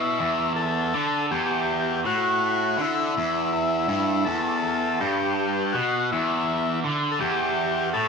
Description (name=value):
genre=rock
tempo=82 BPM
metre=4/4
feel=straight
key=E minor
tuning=A4 = 438 Hz
part: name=combo organ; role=melody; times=0.0-8.1 s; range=E4 to A4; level=-26 LUFS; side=left 6 dB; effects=slapback echo
part: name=overdriven electric guitar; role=riff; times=0.0-8.1 s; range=E2 to D3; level=-24 LUFS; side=right 3 dB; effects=phaser
room=wet spring reverb, RT60 2.0 s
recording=none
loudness=-22 LUFS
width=side -5 dB against mid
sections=0.0-8.1 A section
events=none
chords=0.0 Em